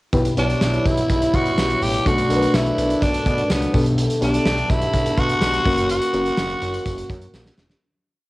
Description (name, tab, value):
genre	1980s-style pop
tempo	125 BPM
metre	4/4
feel	straight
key	unclear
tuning	A4 = 440 Hz
part	mellow FM electric piano	accompaniment	0.1-7.8 s	B2 to C#5	-23 LUFS	left 1 dB	chorus, cassette tape
part	mellow brass ensemble	sustained chords	0.1-7.8 s	D3 to A4	-26 LUFS	equal	cassette tape
part	fat analog bass	bass	0.1-7.8 s	E1 to B2	-25 LUFS	equal	none
part	modern studio drum kit	drums	0.1-7.8 s	hi-hat, kick drum, snare drum	-23 LUFS	equal	cassette tape
part	tambourine	percussion	0.3-7.8 s	none	-42 LUFS	right 3 dB	none
part	growling tenor saxophone	melody	0.4-7.3 s	B3 to G4	-23 LUFS	equal	cassette tape
room	moderate studio reverb, RT60 0.6 s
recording	home recording on cassette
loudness	-17 LUFS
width	side -19 dB against mid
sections	0.1-7.8 pre-chorus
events	fade-out 5.9-7.8; drum fill 7.3-7.8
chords	0.1 Em/B; 2.1 D/B; 3.7 Gadd9/B; 5.7 F#